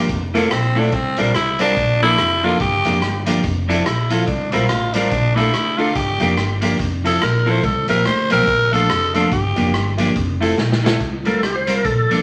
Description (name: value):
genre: ska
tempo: 143 BPM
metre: 4/4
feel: swing 60% on 8ths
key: C mixolydian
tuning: A4 = 444 Hz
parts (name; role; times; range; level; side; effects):
- growling tenor saxophone; melody; 0.0-10.0 s; Bb3 to C5; -21 LUFS; equal; none
- clean electric guitar; accompaniment; 0.0-12.2 s; F3 to Bb4; -24 LUFS; equal; none
- warm upright piano; stabs; 0.0-11.0 s; Bb3 to Bb4; -29 LUFS; equal; none
- upright bass; bass; 0.0-12.2 s; F1 to D2; -24 LUFS; equal; none
- raw garage drum kit; drums; 0.1-12.2 s; hi-hat, kick drum, rim click, snare drum; -27 LUFS; equal; none
- tonewheel organ; melody; 11.3-12.2 s; G4 to C5; -21 LUFS; equal; overdrive, chorus vibrato, slow rotary speaker
room: wet studio reverb, RT60 0.8 s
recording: vinyl crackle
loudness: -18 LUFS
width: mono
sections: 0.0-11.0 A section; 11.0-12.2 B section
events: tenor saxophone solo 0.0-11.0; drum fill 10.6-11.0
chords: 0.1 Fmaj7; 0.9 C7sus4; 1.8 Bbmaj7; 2.6 Gm7; 3.4 Fmaj7; 4.3 C7sus4; 5.1 Bbmaj7; 6.0 Gm7; 6.8 Fmaj7; 7.6 C7sus4; 8.5 Bbmaj7; 9.3 Gm7; 10.2 Fmaj7; 11.0 C7sus4